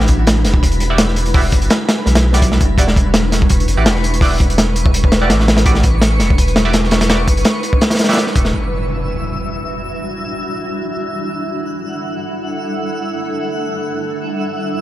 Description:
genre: drum and bass, jungle.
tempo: 167 BPM.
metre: 4/4.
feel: straight.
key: E dorian.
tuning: A4 = 440 Hz.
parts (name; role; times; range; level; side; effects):
granular cloud pad; sustained chords; 0.0-14.8 s; G3 to B4; -23 LUFS; right 1 dB; built-in reverb.
saturated sub bass; bass; 0.0-8.5 s; E1 to B1; -16 LUFS; equal; none.
crunchy breakbeat drum kit; drums; 0.0-8.5 s; hi-hat, kick drum, snare drum; -13 LUFS; equal; none.
twinkling granular texture; texture; 0.0-14.8 s; B4 to E6; -25 LUFS; left 1 dB; built-in reverb.
band-passed chord stab; stabs; 0.9-8.2 s; G3 to D5; -23 LUFS; right 3 dB; chorus, phaser, dub echo.
impact; sound effects; 8.5-10.0 s; none; -25 LUFS; equal; none.
room: small room ambience.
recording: none.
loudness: -13 LUFS.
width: side -14 dB against mid.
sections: 0.0-8.5 A section; 8.5-14.8 B section.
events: drop 0.0-8.5; impact 8.5-10.0.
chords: 0.0 Em9.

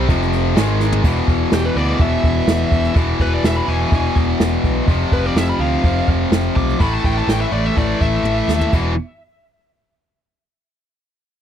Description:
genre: heavy metal.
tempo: 125 BPM.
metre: 4/4.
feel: straight.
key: E phrygian dominant.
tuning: A4 = 440 Hz.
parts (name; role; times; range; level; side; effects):
tight distorted guitar; riff; 0.0-8.9 s; E2 to A3; -21 LUFS; left 14 dB; distortion.
tight distorted guitar; riff; 0.0-8.9 s; E2 to A3; -23 LUFS; right 14 dB; distortion.
overdriven picked electric bass; bass; 0.0-9.0 s; E1 to D#2; -20 LUFS; equal; none.
jazz brush drum kit; drums; 0.1-8.8 s; crash cymbal, hi-hat, kick drum, snare drum, toms; -18 LUFS; right 1 dB; none.
high-gain lead guitar; melody; 1.5-8.7 s; G4 to D6; -24 LUFS; equal; distortion, tape echo.
room: little or no reverb.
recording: dry, close 1970s-style studio recording.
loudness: -15 LUFS.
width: side -9 dB against mid.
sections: 0.0-1.0 A section; 1.0-8.7 B section; 8.7-10.7 C section.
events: drum fill 0.8, 8.2-8.7; lead electric guitar solo 1.0-8.7.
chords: 0.1 F5; 0.6 G#5; 1.0 E5; 4.9 F5; 6.8 A5; 8.7 E5.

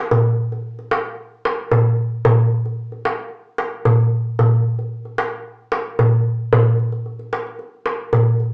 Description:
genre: arabic.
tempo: 112 BPM.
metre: 4/4.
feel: straight.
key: none.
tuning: none.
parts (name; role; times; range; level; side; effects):
darbuka; percussion; 0.1-8.5 s; none; -16 LUFS; equal; none.
room: moderate studio reverb, RT60 0.5 s.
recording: band playing live in one room, small speaker sound.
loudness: -16 LUFS.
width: side -39 dB against mid.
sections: 0.0-8.5 A section.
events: none.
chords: none.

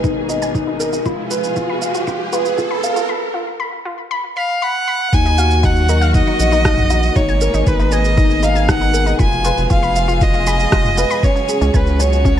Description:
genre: piano and strings electronica.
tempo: 118 BPM.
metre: 4/4.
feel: straight.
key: Eb minor.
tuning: A4 = 440 Hz.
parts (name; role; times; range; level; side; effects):
dark symphonic string section; sustained chords; 0.0-12.4 s; Cb3 to Gb5; -24 LUFS; left 1 dB; none.
analog pluck; arpeggios; 0.0-12.4 s; Db4 to Cb6; -26 LUFS; left 3 dB; chorus, sidechain pumping, tape echo.
dark upright piano; riff; 0.0-12.4 s; Db4 to Ab5; -21 LUFS; left 1 dB; tape echo.
round analog bass; bass; 0.0-12.4 s; F1 to Eb2; -18 LUFS; equal; sidechain pumping.
electronic kick drum; drums; 0.0-12.4 s; none; -16 LUFS; equal; none.
minimal click drum kit; drums; 0.0-12.4 s; rim click, shaker, toms; -24 LUFS; right 3 dB; none.
riser; sound effects; 0.1-3.1 s; none; -25 LUFS; right 2 dB; none.
rich violin; melody; 4.4-12.4 s; Cb5 to Ab5; -19 LUFS; equal; tape echo.
room: light reverb, digital ambience.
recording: dark, warm production, high-pass filter.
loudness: -14 LUFS.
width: side -10 dB against mid.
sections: 0.0-5.1 A section; 5.1-12.4 B section.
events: build-up 0.0-5.1; filter sweep on synth arpeggio sound 0.0-5.1; filter sweep 0.0-5.1; riser 0.1-3.1; drop 5.1-12.4.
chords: 0.0 Abmadd9; 1.1 Fdim; 3.1 B5; 5.1 Ebmadd9; 7.2 Abmadd9; 9.2 Fdim; 11.2 Dbsus4.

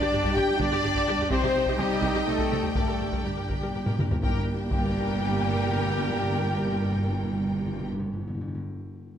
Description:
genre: cinematic, epic orchestral film score.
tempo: 125 BPM.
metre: 3/4.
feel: straight.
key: G minor.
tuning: A4 = 441 Hz.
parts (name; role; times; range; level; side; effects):
warm symphonic violin section; melody; 0.0-7.9 s; G4 to G5; -38 LUFS; left 5 dB; none.
small flute group; second line; 0.0-7.9 s; G4 to G5; -35 LUFS; left 4 dB; none.
warm symphonic violin section; second line; 0.0-7.9 s; Bb4 to G5; -37 LUFS; left 2 dB; none.
warm symphonic viola section; accompaniment; 0.0-7.9 s; G4 to Bb4; -36 LUFS; equal; none.
mellow French horn section; sustained chords; 0.0-7.9 s; G3 to G4; -31 LUFS; left 3 dB; none.
mellow trombone section; sustained chords; 0.0-7.9 s; G3 to Eb4; -36 LUFS; right 6 dB; none.
warm symphonic string section; sustained chords; 0.0-7.9 s; G3 to G5; -37 LUFS; equal; none.
mellow trumpet section; stabs; 0.0-7.9 s; G4 to G5; -34 LUFS; equal; none.
rich symphonic cello section; bass; 0.0-7.9 s; G2 to C3; -33 LUFS; right 3 dB; none.
warm symphonic double bass section; bass; 0.1-7.9 s; G1 to C2; -33 LUFS; right 3 dB; none.
solo taiko drums; drums; 0.2-5.2 s; none; -30 LUFS; equal; none.
timpani; percussion; 2.8-8.6 s; G2; -32 LUFS; left 1 dB; none.
room: moderate scoring stage reverb, RT60 1.7 s.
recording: close, detailed microphones.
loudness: -24 LUFS.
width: side -9 dB against mid.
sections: 0.0-4.2 A section; 4.2-7.1 B section.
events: timpani fill 2.8-4.2; drum fill 3.9-4.2.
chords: 0.0 G5; 1.3 Cm; 2.8 Gm.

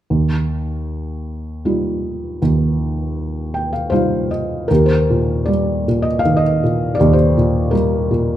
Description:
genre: classical, lyrical solo piano.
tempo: 78 BPM.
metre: 3/4.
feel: uneven beats, rubato.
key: Eb major.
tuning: A4 = 441 Hz.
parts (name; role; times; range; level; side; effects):
felt-muted upright piano; solo; 0.1-8.4 s; Eb2 to G5; -15 LUFS; equal; none.
room: moderate recital hall reverb, RT60 1.5 s.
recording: minimal, uncompressed stereo recording.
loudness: -15 LUFS.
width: side -12 dB against mid.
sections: 0.1-4.7 A section; 4.7-8.4 B section.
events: felt piano fill 3.2-4.7.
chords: 0.1 Ebadd9; 4.7 Eb.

